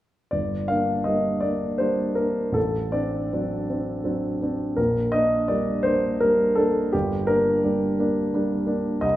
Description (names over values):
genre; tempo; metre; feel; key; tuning
classical, romantic character piece for solo piano; 74-86 BPM; 3/4; rubato; G minor; A4 = 441 Hz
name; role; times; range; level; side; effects
warm grand piano; solo; 0.3-9.2 s; G1 to F5; -21 LUFS; equal; none
room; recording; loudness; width
wet recital hall reverb, RT60 1.4 s; recorded in a church or concert hall; -21 LUFS; side -14 dB against mid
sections
0.3-9.2 A section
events
none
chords
0.3 Gm; 2.6 D7/A; 4.8 Gm/Bb; 6.9 Gm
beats
| 0.32 1.06 1.79 | 2.56 3.33 4.06 | 4.78 5.49 6.21 | 6.93 7.63 8.33 | 9.04